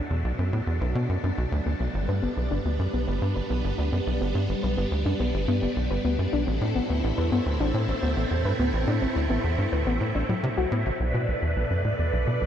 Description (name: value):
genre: ambient, sequencer-driven space music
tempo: 106 BPM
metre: 4/4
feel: straight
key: B phrygian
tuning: A4 = 440 Hz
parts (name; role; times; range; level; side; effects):
- phased string machine; sustained chords; 0.0-12.5 s; G2 to B4; -30 LUFS; right 1 dB; ensemble chorus, phaser
- soft round pluck; arpeggios; 0.0-10.8 s; B2 to B4; -31 LUFS; moving between left 7 dB and right 2 dB; chorus, auto-pan, tape echo
- tight sequencer bass; riff; 0.1-12.5 s; G1 to C3; -26 LUFS; equal; vintage 12-bit sampler grit, tape echo
room: moderate huge ambient reverb, RT60 8.4 s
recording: in a vast, echoing space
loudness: -24 LUFS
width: side -9 dB against mid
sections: 0.0-11.0 A section; 11.0-12.5 B section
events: fade-in on synth arpeggio sound 0.0-11.0; fade-in on string machine 0.0-11.0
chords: 0.0 Bm7; 1.9 G; 6.5 Am; 11.0 Bm7